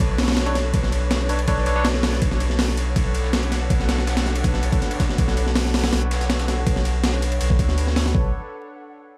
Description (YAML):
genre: drum and bass, jungle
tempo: 162 BPM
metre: 4/4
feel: straight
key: B minor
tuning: A4 = 440 Hz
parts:
  - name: warbly tape-like pad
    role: sustained chords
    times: 0.0-8.3 s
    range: D4 to C#5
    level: -33 LUFS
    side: equal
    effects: chorus, built-in reverb
  - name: soft dub sub bass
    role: bass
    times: 0.0-8.3 s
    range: B1 to D2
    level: -25 LUFS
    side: equal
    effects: none
  - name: breakbeat sampler-style drum kit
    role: drums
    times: 0.0-8.2 s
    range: hi-hat, kick drum, ride cymbal, snare drum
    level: -24 LUFS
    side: equal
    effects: overdrive
  - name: breakbeat sampler-style drum kit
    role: drums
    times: 0.0-8.1 s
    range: hi-hat, snare drum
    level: -39 LUFS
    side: equal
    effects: none
  - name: wind-like tuned noise texture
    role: texture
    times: 0.0-8.2 s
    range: C#5 to F#5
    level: -38 LUFS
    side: equal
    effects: built-in reverb
  - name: barky tine electric piano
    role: stabs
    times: 0.5-1.9 s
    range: D4 to C#5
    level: -30 LUFS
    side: equal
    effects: vintage 12-bit sampler grit, dub echo
room: light reverb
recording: dry, gritty hardware recording, vinyl crackle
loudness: -21 LUFS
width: mono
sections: 0.0-8.1 A section; 8.1-9.2 B section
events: none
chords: 0.0 Bm9